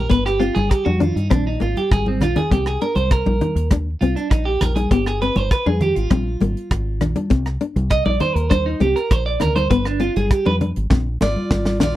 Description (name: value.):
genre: highlife guitar band.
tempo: 100 BPM.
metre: 4/4.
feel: straight.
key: C minor.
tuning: A4 = 440 Hz.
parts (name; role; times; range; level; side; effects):
clean electric guitar; arpeggios; 0.0-10.6 s; C4 to Eb5; -22 LUFS; right 3 dB; slapback echo.
deep dub fingered electric bass; bass; 0.0-11.9 s; G1 to G2; -22 LUFS; equal; none.
nylon-string guitar; accompaniment; 0.1-11.9 s; Bb3 to Eb4; -22 LUFS; left 6 dB; none.
tight funk drum kit; drums; 0.1-11.9 s; hi-hat, kick drum, rim click, snare drum; -19 LUFS; equal; none.
congas; percussion; 0.6-11.9 s; none; -24 LUFS; equal; none.
picked steel-string acoustic guitar; melody; 11.2-12.0 s; F4 to D5; -23 LUFS; equal; none.
room: little or no reverb.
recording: dry, close 1970s-style studio recording.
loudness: -16 LUFS.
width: side -14 dB against mid.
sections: 0.0-12.0 A section.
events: clean electric guitar solo 0.0-12.0; drum fill 1.8-2.5, 10.9-12.0.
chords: 0.1 G7; 1.3 Bb7; 2.5 Cm7; 4.9 G7; 6.1 Bb7; 7.3 Cm7; 9.7 G7; 10.9 Bb7.